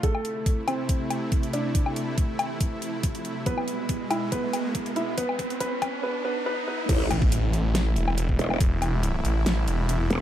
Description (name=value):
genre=heavy wobble dubstep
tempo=140 BPM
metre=4/4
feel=half-time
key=A harmonic minor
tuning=A4 = 440 Hz
part: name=felt-muted upright piano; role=melody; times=0.0-6.9 s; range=A3 to E5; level=-30 LUFS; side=right 2 dB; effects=ping-pong delay
part: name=supersaw pad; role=sustained chords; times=0.0-10.2 s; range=B2 to E4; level=-32 LUFS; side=equal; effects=sidechain pumping
part: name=dubstep drum kit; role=drums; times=0.0-10.2 s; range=crash cymbal, hi-hat, snare drum, woodblock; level=-30 LUFS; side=left 2 dB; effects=studio reverb
part: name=electronic kick drum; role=drums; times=0.0-8.7 s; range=none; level=-24 LUFS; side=equal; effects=studio reverb
part: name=riser and impact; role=sound effects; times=2.4-8.6 s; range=none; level=-34 LUFS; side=equal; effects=none
part: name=growl bass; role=bass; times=6.9-10.2 s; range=E1 to A1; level=-24 LUFS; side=equal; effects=chorus, overdrive
part: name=snarling distorted saw bass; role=bass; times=7.1-10.1 s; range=E1 to A1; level=-24 LUFS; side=equal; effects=distortion, overdrive
room=light reverb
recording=high-pass filter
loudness=-24 LUFS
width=side -11 dB against mid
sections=0.0-6.9 A section; 6.9-10.2 B section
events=build-up 0.0-6.9; filter sweep 0.0-6.9; riser 2.4-6.9; drum fill 3.5-6.0; drop 6.9-10.2; impact 6.9-8.6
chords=0.0 Am; 3.5 E; 6.9 Am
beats=| 0.03 0.46 0.89 1.32 | 1.75 2.18 2.61 3.03 | 3.46 3.89 4.32 4.75 | 5.18 5.61 6.03 6.46 | 6.89 7.32 7.75 8.18 | 8.61 9.03 9.46 9.89